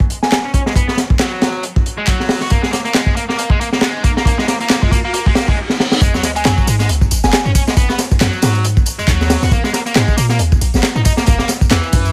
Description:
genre	breakbeat, breaks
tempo	137 BPM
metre	4/4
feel	swing 57% on 16ths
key	G# minor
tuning	A4 = 440 Hz
part	crunchy breakbeat drum kit	drums	0.0-12.0 s	hi-hat, kick drum, snare drum	-17 LUFS	equal	none
part	riser, reverse cymbal and sub drop	sound effects	2.8-7.8 s	none	-29 LUFS	equal	none
part	soft synth bell	melody	0.2-0.4, 6.4-7.4 s	G#5	-26 LUFS	equal	chorus, telephone sound, tape echo
part	garage drum kit	drums	0.3-12.1 s	handclaps, ride cymbal, tambourine	-25 LUFS	equal	overdrive
part	overdriven electric guitar	riff	0.4-12.1 s	E3 to F#4	-23 LUFS	equal	vintage 12-bit sampler grit, low-pass filter, tape echo
part	warm 808-style bass	bass	6.0-12.1 s	F#1 to A#2	-19 LUFS	equal	none
room	light reverb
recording	none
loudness	-15 LUFS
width	mono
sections	0.0-6.0 A section; 6.0-12.1 B section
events	build-up 0.0-6.0; reverse cymbal 5.1-6.0; drum fill 5.7-6.0; drop 6.0-12.1; impact 6.0-7.8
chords	0.0 N.C.; 2.5 G#sus2; 6.0 G#7(no3); 9.5 G#sus2; 11.3 Esus2

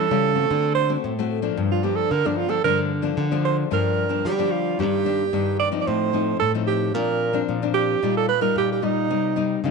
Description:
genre	samba and choro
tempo	112 BPM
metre	4/4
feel	straight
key	G minor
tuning	A4 = 440 Hz
part	breathy alto saxophone	melody	0.0-9.6 s	D4 to D5	-22 LUFS	right 10 dB	none
part	nylon-string guitar	accompaniment	0.0-9.7 s	G2 to F#4	-25 LUFS	left 14 dB	none
part	nylon-string guitar	bass	0.0-9.7 s	G2 to G3	-26 LUFS	equal	none
room	moderate echo chamber reverb, RT60 1.5 s, studio reverb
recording	1960s-style stereo with parts hard left and right, nothing above 10.6 kHz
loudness	-20 LUFS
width	side -4 dB against mid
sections	0.0-3.7 A section; 3.7-9.7 B section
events	alto saxophone solo 0.0-3.7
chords	0.0 A7; 0.5 D7; 1.6 Gm7; 4.8 Ebmaj7/G; 5.9 F7/A; 7.0 Bbadd9; 8.0 Ebadd9/Bb; 9.1 Cm7

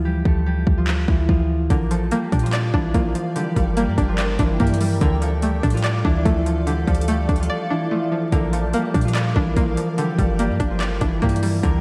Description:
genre	hip hop, trap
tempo	145 BPM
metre	4/4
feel	half-time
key	D minor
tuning	A4 = 440 Hz
part	concert harp	melody	0.0-11.8 s	E3 to Bb4	-26 LUFS	equal	low-pass filter
part	clean 808-style bass	bass	0.0-11.8 s	G1 to Bb2	-24 LUFS	equal	none
part	trap drum kit	drums	0.3-11.7 s	handclaps, hi-hat, kick drum	-25 LUFS	equal	overdrive, vintage 12-bit sampler grit
part	string-like resonator pluck	accompaniment	1.7-11.8 s	D3 to D5	-28 LUFS	equal	chorus, low-pass filter
part	granular cloud pad	sustained chords	2.7-11.8 s	A4 to D6	-33 LUFS	equal	built-in reverb, lush chorus
room	moderate lush hall reverb, RT60 2.1 s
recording	dreamy mix soaked in reverb, vinyl crackle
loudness	-20 LUFS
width	mono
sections	0.0-11.8 A section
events	break 0.0-1.7, 7.5-8.3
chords	0.0 Dm; 1.7 Bb; 3.4 Gm; 5.0 Dm; 8.3 Bb; 10.0 Gm

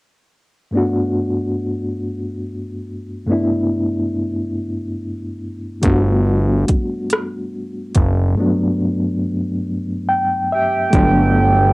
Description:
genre	slow six-eight R&B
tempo	47 BPM (dotted quarters)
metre	6/8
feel	straight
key	G major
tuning	A4 = 437 Hz
part	overdriven reed electric piano	accompaniment	0.7-11.7 s	G2 to G5	-19 LUFS	equal	fast tremolo, cassette tape
part	fat analog bass	bass	5.8-11.7 s	F#1 to G1	-15 LUFS	equal	tube saturation
part	smooth R&B drum kit	drums	5.8-11.1 s	hi-hat, kick drum, rim click	-16 LUFS	equal	overdrive, cassette tape
part	soft octave-layered synth lead	melody	10.5-11.7 s	G5	-17 LUFS	right 3 dB	chorus, phaser, cassette tape
part	hollow soft pad	sustained chords	10.9-11.7 s	F#3 to A4	-24 LUFS	right 2 dB	chorus, cassette tape
room	light reverb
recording	home recording on cassette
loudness	-16 LUFS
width	side -22 dB against mid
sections	0.7-10.9 A section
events	reed electric piano fill 9.7-10.9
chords	0.7 Gmaj9

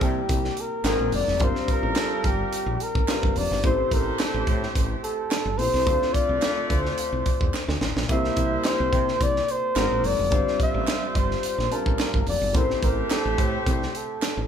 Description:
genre	polished 1980s jazz-funk pop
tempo	108 BPM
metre	4/4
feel	swing 54% on 16ths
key	unclear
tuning	A4 = 435 Hz
part	breathy flugelhorn	melody	0.0-14.5 s	G4 to E5	-26 LUFS	left 1 dB	none
part	mellow horn section	second line	0.0-14.5 s	Eb3 to D5	-32 LUFS	right 2 dB	none
part	warm concert grand piano	accompaniment	0.0-14.5 s	G3 to A5	-30 LUFS	left 3 dB	none
part	woody fretless electric bass	bass	0.0-14.5 s	F1 to C3	-29 LUFS	equal	none
part	tight funk drum kit	drums	0.0-14.4 s	hi-hat, kick drum, snare drum	-26 LUFS	equal	none
part	group handclap	percussion	0.8-14.4 s	none	-38 LUFS	right 5 dB	none
room	moderate large studio reverb, RT60 1.2 s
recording	band playing live in one room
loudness	-21 LUFS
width	side -8 dB against mid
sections	0.0-14.5 A section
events	drum fill 7.5-8.1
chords	0.0 C7; 0.9 Ab9; 1.4 G7sus4; 3.6 Am7; 5.9 Dm7; 8.1 C7; 9.8 Ab9; 10.3 G7sus4; 12.6 Am7

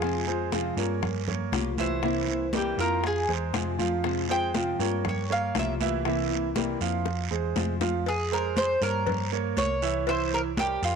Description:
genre	latin, Cuban son and guajira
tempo	119 BPM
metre	4/4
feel	straight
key	F harmonic minor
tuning	A4 = 441 Hz
part	Cuban tres	melody	0.0-11.0 s	F4 to G5	-30 LUFS	equal	tape echo
part	nylon-string guitar	accompaniment	0.0-8.1 s	C3 to G4	-31 LUFS	left 16 dB	none
part	warm baby grand piano	arpeggios	0.0-11.0 s	E3 to F5	-30 LUFS	right 14 dB	none
part	hollow-body short-scale picked electric bass	bass	0.0-11.0 s	C2 to G2	-32 LUFS	equal	none
part	bongos and cowbell	percussion	0.0-10.8 s	none	-35 LUFS	left 16 dB	none
part	congas	percussion	0.0-11.0 s	none	-34 LUFS	equal	none
part	guiro	percussion	0.0-11.0 s	none	-38 LUFS	right 14 dB	none
room	light reverb, small room ambience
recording	1960s-style stereo with parts hard left and right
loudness	-25 LUFS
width	side -6 dB against mid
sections	0.0-8.1 A section; 8.1-11.0 B section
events	Cuban tres solo 0.0-8.1; drum fill 7.1-8.1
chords	0.0 Fm; 1.0 Gm7b5; 2.0 C7; 3.0 Fm; 5.0 Gm7b5; 6.1 C7; 7.1 Fm; 9.1 Gdim; 10.1 C7

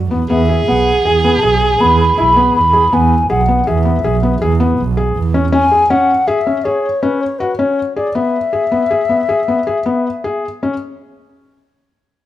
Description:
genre	contemporary instrumental, contemporary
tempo	160 BPM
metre	7/4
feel	straight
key	E major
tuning	A4 = 440 Hz
part	clear double bass	bass	0.0-5.5 s	B1 to E2	-16 LUFS	right 4 dB	none
part	felt-muted upright piano	arpeggios	0.1-10.7 s	B3 to G#4	-17 LUFS	left 3 dB	none
part	mellow baroque flute	melody	0.3-10.4 s	B4 to B5	-14 LUFS	left 2 dB	none
part	clear viola	second line	0.3-2.9 s	G#4	-16 LUFS	right 3 dB	none
room	light reverb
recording	none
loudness	-12 LUFS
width	side -13 dB against mid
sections	0.0-10.8 A section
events	slowing down 7.8-10.8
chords	0.3 E; 5.5 F#sus2 (rootless); 8.2 E

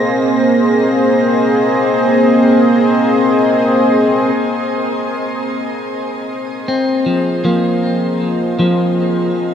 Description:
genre	ambient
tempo	free time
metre	none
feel	none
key	unclear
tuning	A4 = 444 Hz
part	warm analog pad	sustained chords	0.0-9.5 s	Bb3 to Eb5	-13 LUFS	equal	chorus
part	wind-like tuned noise texture	texture	0.0-4.4 s	Bb6	-30 LUFS	right 1 dB	built-in reverb
part	clean electric guitar	arpeggios	6.7-9.5 s	F3 to C4	-14 LUFS	left 1 dB	diffuse ambient delay
room	wet shimmer reverb, RT60 8.6 s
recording	none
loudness	-12 LUFS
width	side -8 dB against mid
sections	0.0-4.4 A section; 4.4-9.5 A section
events	fade-out on synth texture 0.0-4.4; fade-in on analog synth pad 4.4-9.5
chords	0.0 Bb9sus4; 4.4 Fm7

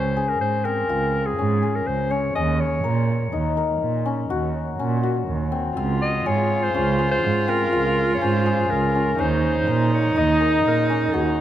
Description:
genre	contemporary instrumental, chamber music in an uneven meter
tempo	123 BPM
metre	7/4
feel	straight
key	Db major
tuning	A4 = 440 Hz
part	clear clarinet	melody	0.0-11.4 s	Ab4 to Eb5	-25 LUFS	left 1 dB	none
part	hammered dulcimer	arpeggios	0.0-11.4 s	C4 to Bb4	-25 LUFS	left 6 dB	none
part	muted cello	bass	0.0-11.4 s	Db2 to Bb2	-23 LUFS	right 3 dB	none
part	dark viola	second line	5.8-11.4 s	Eb4 to F4	-23 LUFS	right 3 dB	none
room	light reverb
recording	close, detailed microphones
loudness	-19 LUFS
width	side -11 dB against mid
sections	0.0-11.4 A section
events	none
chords	0.0 Dbmaj7; 2.4 Ebm7; 5.8 Dbmaj7; 9.2 Ebm7

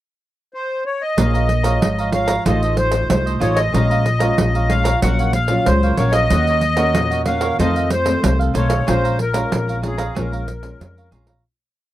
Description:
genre	samba and choro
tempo	94 BPM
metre	4/4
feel	straight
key	Bb minor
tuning	A4 = 440 Hz
part	accordion	melody	0.5-11.1 s	Ab4 to Gb5	-21 LUFS	left 1 dB	light tremolo tuning
part	cavaquinho	accompaniment	1.2-11.4 s	Eb4 to Bb5	-25 LUFS	right 6 dB	none
part	nylon-string guitar	accompaniment	1.2-11.4 s	F2 to Db5	-24 LUFS	left 2 dB	none
part	upright bass	bass	1.2-11.4 s	Ab1 to F2	-19 LUFS	equal	none
part	pandeiro	percussion	1.2-11.4 s	none	-22 LUFS	right 3 dB	none
room	light reverb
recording	dry, close 1970s-style studio recording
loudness	-15 LUFS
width	side -14 dB against mid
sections	0.0-1.2 pickup bar; 1.2-11.5 A section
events	fade-out 8.9-11.5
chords	0.0 N.C.; 1.2 Bbm7; 2.5 F7/A; 3.7 Bbm7; 5.0 Gbmaj7/Bb; 6.3 Ebm7; 7.6 F7; 8.9 Bbm7

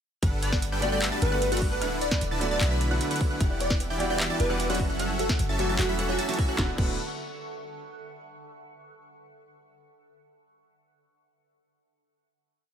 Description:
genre	future bass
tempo	151 BPM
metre	4/4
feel	half-time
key	D major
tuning	A4 = 441 Hz
part	shimmering ambient pad	sustained chords	0.8-6.8 s	G3 to D6	-41 LUFS	right 1 dB	chorus, built-in reverb, phaser, sidechain pumping
part	wide unison pluck	arpeggios	0.2-6.9 s	E6 to B6	-38 LUFS	right 1 dB	sidechain pumping, tape echo
part	supersaw chords	riff	0.2-6.9 s	D3 to B5	-31 LUFS	equal	sidechain pumping, tape echo
part	warm 808-style bass	bass	0.2-7.0 s	D1 to B1	-30 LUFS	equal	sidechain pumping
part	electronic kick drum	drums	0.2-6.9 s	none	-27 LUFS	equal	none
part	trap drum kit	drums	0.2-6.9 s	crash cymbal, handclaps, hi-hat, snare drum	-32 LUFS	equal	none
part	plucky unison lead	melody	0.4-6.6 s	F#4 to D5	-31 LUFS	left 1 dB	ensemble chorus, sidechain pumping, tape echo
part	bright baby grand piano	accompaniment	0.8-6.9 s	D3 to F#4	-34 LUFS	right 3 dB	sidechain pumping, tape echo
part	soft round pluck	arpeggios	3.4-7.0 s	B3 to F#5	-40 LUFS	right 4 dB	none
room	light reverb, digital ambience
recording	none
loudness	-24 LUFS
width	side -8 dB against mid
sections	0.2-6.6 drop; 6.6-8.2 final chord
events	drop 0.2-6.6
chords	0.2 Gmaj9; 1.8 D6; 3.4 Em9; 4.8 F#m7; 6.6 D6

